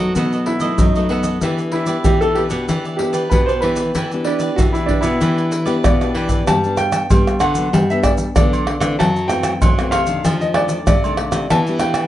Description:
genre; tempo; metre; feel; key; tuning
samba and choro; 95 BPM; 4/4; straight; E minor; A4 = 438 Hz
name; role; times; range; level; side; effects
warm concert grand piano; melody; 0.0-12.1 s; D4 to A5; -20 LUFS; right 1 dB; none
cavaquinho; accompaniment; 0.0-6.5 s; D#4 to D#5; -27 LUFS; right 4 dB; none
nylon-string guitar; accompaniment; 0.0-12.1 s; F2 to G4; -24 LUFS; left 3 dB; none
nylon-string guitar; bass; 0.0-12.0 s; B2 to B3; -22 LUFS; equal; none
maracas, surdo, pandeiro, tamborim and agogo bells; percussion; 0.2-12.1 s; none; -18 LUFS; equal; none
room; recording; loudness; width
moderate studio reverb, RT60 0.6 s; nothing above 10.8 kHz; -15 LUFS; side -13 dB against mid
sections
0.0-6.5 A section; 6.5-12.1 B section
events
drum fill 5.8-6.5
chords
0.0 B7; 1.4 Em7; 6.5 Gmaj7; 9.0 F#m7b5; 10.2 F6; 11.5 Em7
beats
0.16 0.80 | 1.43 2.06 2.69 3.32 | 3.95 4.58 5.21 5.84 | 6.47 7.10 7.73 8.36 | 8.99 9.62 10.25 10.88 | 11.50

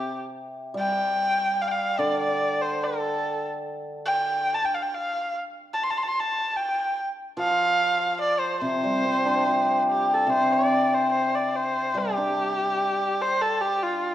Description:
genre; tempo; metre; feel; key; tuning
chinese traditional; 73 BPM; 2/4; rubato; C zhi mode; A4 = 441 Hz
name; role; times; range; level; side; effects
dark erhu; melody; 0.0-14.1 s; F4 to C6; -24 LUFS; equal; none
hammered dulcimer; accompaniment; 0.0-4.5, 7.4-14.1 s; C3 to G4; -26 LUFS; equal; none
room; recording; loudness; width
moderate recital hall reverb, RT60 1.5 s; dark, warm production; -22 LUFS; side -12 dB against mid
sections
0.0-10.3 A section; 10.3-14.1 B section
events
none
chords
none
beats
| 0.37 1.18 | 2.00 2.83 | 3.67 4.52 | 5.35 6.16 | 6.97 7.79 | 8.61 9.44 | 10.29 11.12 | 11.95 12.77 | 13.58

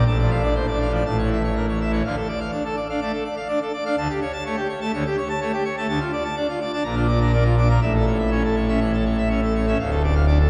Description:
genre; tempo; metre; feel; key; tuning
classical, organ toccata; 124 BPM; 4/4; straight; D minor; A4 = 441 Hz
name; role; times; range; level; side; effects
pipe organ, full organ; solo; 0.0-10.5 s; D1 to Bb5; -22 LUFS; equal; none
room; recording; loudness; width
wet cathedral reverb, RT60 4.3 s; heard from further back in the room, vinyl crackle; -22 LUFS; mono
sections
0.0-2.0 A section; 2.0-10.5 B section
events
none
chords
0.1 Dm/A; 1.1 A; 2.0 Dm; 4.0 A7/D; 5.9 Dm; 6.8 Bb; 7.8 A; 9.8 Dm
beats
| 0.06 0.56 1.05 1.55 | 2.04 2.53 3.01 3.49 | 3.97 4.45 4.93 5.41 | 5.89 6.37 6.84 7.33 | 7.82 8.31 8.81 9.30 | 9.79 10.27

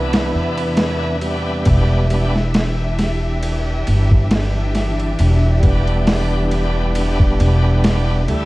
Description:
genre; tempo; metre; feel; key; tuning
trip hop; 68 BPM; 4/4; swing 55% on 16ths; E minor; A4 = 440 Hz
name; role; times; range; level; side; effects
bright tonewheel organ; accompaniment; 0.0-8.5 s; E3 to E4; -22 LUFS; equal; overdrive, fast rotary speaker, harmonic tremolo, tape echo
clear studio string section; sustained chords; 0.0-8.5 s; C3 to E5; -24 LUFS; equal; none
upright bass; bass; 0.0-8.5 s; E1 to E2; -17 LUFS; equal; tube saturation
dusty soul sampler-style drum kit; drums; 0.1-8.5 s; hi-hat, kick drum, ride cymbal, snare drum; -20 LUFS; equal; overdrive, studio reverb
room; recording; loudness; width
digital ambience; worn, warbling old tape, cassette tape, vinyl crackle, warbly pitch drift; -14 LUFS; side -20 dB against mid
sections
0.0-8.5 A section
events
none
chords
0.0 Cmaj7; 1.7 Em7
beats
0.78 | 1.66 2.54 3.43 4.31 | 5.19 6.07 6.96 7.84

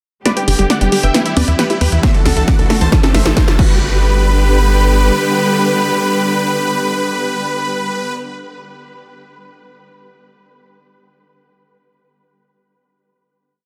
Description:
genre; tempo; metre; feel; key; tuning
uplifting trance; 135 BPM; 4/4; straight; G major; A4 = 441 Hz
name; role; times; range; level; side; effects
big supersaw lead; melody; 0.3-8.1 s; E4 to A5; -21 LUFS; equal; sidechain pumping, low-pass filter, delay
unison pluck; second line; 0.3-8.5 s; E4 to A5; -27 LUFS; equal; none
rich symphonic string section; sustained chords; 0.3-8.1 s; D3 to G4; -22 LUFS; equal; sidechain pumping
analog pluck; arpeggios; 0.3-4.0 s; E3 to B4; -25 LUFS; equal; chorus, sidechain pumping, dub echo
punchy analog drum machine; drums; 0.3-3.7 s; congas, crash cymbal, hi-hat, snare drum; -22 LUFS; equal; overdrive, sidechain pumping on hats, sidechain pumping on perc, sidechain pumping on cymbals
riser; sound effects; 2.0-3.8 s; none; -32 LUFS; equal; none
tight sequencer bass; bass; 0.5-5.1 s; G1 to E2; -16 LUFS; equal; sidechain pumping
electronic kick drum; drums; 2.0-3.7 s; none; -15 LUFS; equal; overdrive
room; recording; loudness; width
light reverb; dense, heavily limited modern master; -14 LUFS; mono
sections
0.3-3.8 build; 3.8-7.4 final hit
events
build-up 0.3-3.8; drum fill 0.3-3.8; filter sweep on synth arpeggio sound 0.3-3.8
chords
0.3 G; 1.1 Em; 2.0 Dadd9; 2.9 Am7; 3.6 G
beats
| 0.26 0.70 1.14 1.59 | 2.03 2.48 2.92 3.37 | 3.81 4.25 4.70 5.14 | 5.59 6.03 6.48 6.92

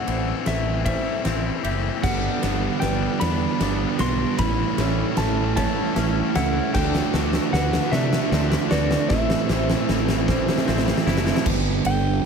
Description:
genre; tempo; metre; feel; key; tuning
post-rock; 51 BPM (dotted quarters); 6/8; straight; unclear; A4 = 439 Hz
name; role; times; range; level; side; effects
electric slide guitar; melody; 0.0-12.3 s; D5 to C6; -30 LUFS; left 3 dB; tape echo
ethereal airy pad; sustained chords; 0.0-12.3 s; F#3 to A5; -36 LUFS; equal; none
felt-muted upright piano; arpeggios; 0.0-12.2 s; B3 to E5; -35 LUFS; right 4 dB; tape echo
twangy electric guitar; arpeggios; 0.0-11.5 s; A2 to G4; -35 LUFS; left 3 dB; none
tight distorted guitar; riff; 0.0-11.4 s; G2 to F#4; -29 LUFS; left 10 dB; distortion
fuzz fingered electric bass; bass; 0.1-12.2 s; F#1 to C3; -26 LUFS; equal; overdrive
huge arena drum kit; drums; 0.1-12.0 s; crash cymbal, kick drum, ride cymbal, snare drum; -25 LUFS; left 1 dB; none
sludgy distorted guitar; riff; 2.0-12.3 s; G2 to F#4; -25 LUFS; right 14 dB; overdrive
room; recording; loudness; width
light reverb, small room ambience; none; -19 LUFS; side -6 dB against mid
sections
0.0-11.5 A section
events
build-up 0.0-11.5; drum fill 0.0-11.5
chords
0.0 Am7; 2.0 Gmaj7; 4.4 A7; 6.8 D7; 9.1 Am7; 11.5 G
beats
0.85 | 2.03 3.21 | 4.39 5.57 | 6.75 7.93 | 9.11 10.29 | 11.46

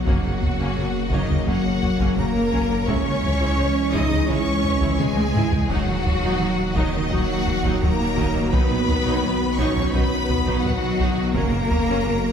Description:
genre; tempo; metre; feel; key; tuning
cinematic, hybrid orchestral and electronic film score; 85 BPM; 4/4; straight; unclear; A4 = 441 Hz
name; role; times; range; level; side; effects
clear studio violin section; melody; 0.0-12.3 s; Eb5 to Eb6; -30 LUFS; left 2 dB; none
warm symphonic violin section; second line; 0.0-12.3 s; Eb4 to Eb5; -29 LUFS; left 3 dB; none
ethereal airy pad; sustained chords; 0.0-12.3 s; Fb3 to Eb5; -30 LUFS; left 1 dB; none
mellow French horn section; sustained chords; 0.0-12.3 s; Eb3 to Eb4; -28 LUFS; left 2 dB; none
rich symphonic cello section; bass; 0.0-12.3 s; Eb3 to Eb4; -28 LUFS; right 2 dB; none
saturated sub bass; bass; 0.0-12.3 s; Eb1 to Db2; -29 LUFS; equal; none
rich symphonic viola section; accompaniment; 0.1-12.1 s; Db3 to Fb4; -30 LUFS; right 2 dB; none
dark trombone section; sustained chords; 0.1-12.3 s; Db3 to Bb3; -30 LUFS; right 2 dB; none
rich chamber double bass section; bass; 0.1-12.1 s; Gb1 to Eb2; -29 LUFS; right 2 dB; none
taiko ensemble; drums; 0.1-12.0 s; none; -25 LUFS; equal; none
room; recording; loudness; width
wet scoring stage reverb, RT60 1.6 s; heard from further back in the room; -19 LUFS; side -7 dB against mid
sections
0.0-12.3 A section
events
drum fill 5.0-5.7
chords
0.1 Gb; 2.9 Dbm; 5.7 Ebm; 8.5 B; 11.4 Gb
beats
| 0.06 0.76 1.47 2.18 | 2.88 3.59 4.29 5.00 | 5.71 6.41 7.12 7.82 | 8.53 9.23 9.94 10.65 | 11.35 12.06

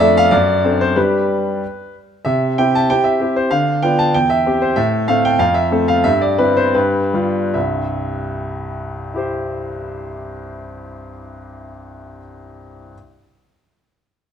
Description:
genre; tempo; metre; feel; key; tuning
classical-period piano sonatina; 74-98 BPM; 2/4; rubato; C major; A4 = 440 Hz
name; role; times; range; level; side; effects
bright grand piano; solo; 0.0-13.0 s; C2 to A5; -15 LUFS; equal; none
room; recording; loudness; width
light reverb; close, detailed microphones; -14 LUFS; side -8 dB against mid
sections
0.0-7.6 A section; 7.6-10.7 B section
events
slowing down 4.1-7.6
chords
0.3 D7/F#; 1.0 G; 2.3 C; 3.5 Bdim/D; 4.1 C/E; 4.8 Am; 5.4 F; 6.1 C/G; 6.8 G7; 7.6 C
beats
0.32 | 0.96 1.61 | 2.26 2.90 | 3.52 4.14 | 4.76 5.39 | 6.05 6.76 | 7.55 8.34 | 9.14 9.93

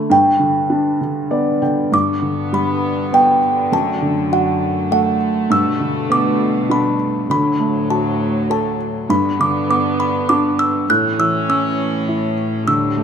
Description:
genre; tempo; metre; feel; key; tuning
children's music, lullaby; 100 BPM; 3/4; straight; G major; A4 = 440 Hz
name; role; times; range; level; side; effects
music box; melody; 0.0-13.0 s; F#5 to F#6; -18 LUFS; right 1 dB; none
felt-muted upright piano; accompaniment; 0.0-13.0 s; F#2 to G5; -18 LUFS; right 1 dB; none
rich chamber string section; sustained chords; 1.9-13.0 s; D2 to C#4; -22 LUFS; left 2 dB; none
room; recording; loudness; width
moderate scoring stage reverb, RT60 1.6 s; minimal, uncompressed stereo recording; -15 LUFS; side -7 dB against mid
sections
0.0-1.9 A section; 1.9-13.0 A section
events
felt piano fill 1.0-1.9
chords
0.1 G; 3.7 D/F#; 5.5 Gadd9; 7.3 D; 9.1 G; 10.9 A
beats
| 0.10 0.70 1.32 | 1.93 2.54 3.13 | 3.72 4.32 4.91 | 5.50 6.10 6.70 | 7.29 7.89 8.49 | 9.09 9.70 10.29 | 10.89 11.49 12.08 | 12.67

